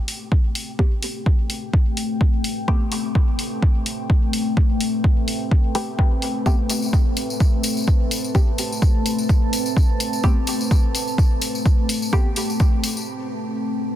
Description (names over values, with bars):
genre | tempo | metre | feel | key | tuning
dub techno | 127 BPM | 4/4 | swing 55% on 16ths | A minor | A4 = 440 Hz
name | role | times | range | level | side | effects
deep dark ambient pad | sustained chords | 0.2-14.0 s | A3 to A5 | -25 LUFS | left 1 dB | chorus, built-in reverb, sidechain pumping
electronic hi-hat | drums | 0.1-12.9 s | none | -28 LUFS | left 1 dB | none
electronic kick drum | drums | 0.3-12.7 s | none | -17 LUFS | equal | overdrive
filtered dub chord stab | stabs | 0.8-2.8, 5.7-12.3 s | A3 to G4 | -31 LUFS | equal | chorus, phaser, dub echo
tambourine | percussion | 6.5-13.1 s | none | -29 LUFS | left 4 dB | none
room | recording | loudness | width
little or no reverb | dense, heavily limited modern master | -18 LUFS | side -12 dB against mid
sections
0.0-14.0 A section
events
filter sweep on synth stab 0.0-14.0; break 13.1-14.0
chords
0.0 Am9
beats
0.32 | 0.79 1.26 1.73 2.21 | 2.68 3.15 3.62 4.10 | 4.57 5.04 5.51 5.99 | 6.46 6.93 7.40 7.88 | 8.35 8.82 9.29 9.77 | 10.24 10.71 11.18 11.66 | 12.13 12.60 13.07 13.54